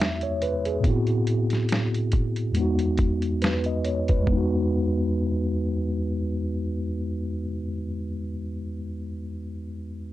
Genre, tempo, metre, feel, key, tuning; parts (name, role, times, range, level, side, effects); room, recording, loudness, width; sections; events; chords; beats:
lo-fi hip hop; 70 BPM; 4/4; swing 56% on 16ths; E major; A4 = 442 Hz
mellow tine electric piano; accompaniment; 0.0-10.1 s; E2 to E5; -24 LUFS; equal; medium stereo tremolo, cassette tape, low-pass filter
lo-fi sampler-style drum kit; drums; 0.0-4.5 s; hi-hat, kick drum, snare drum; -25 LUFS; equal
moderate studio reverb, RT60 0.5 s; dark, warm production; -23 LUFS; side -15 dB against mid
0.0-4.3 A section; 4.3-7.7 B section
filter sweep on tine electric piano 0.0-4.3
0.0 Emaj7; 0.8 Am6; 2.6 Emaj9
| 0.84 1.70 2.56 3.41 | 4.27 5.13 5.99 6.84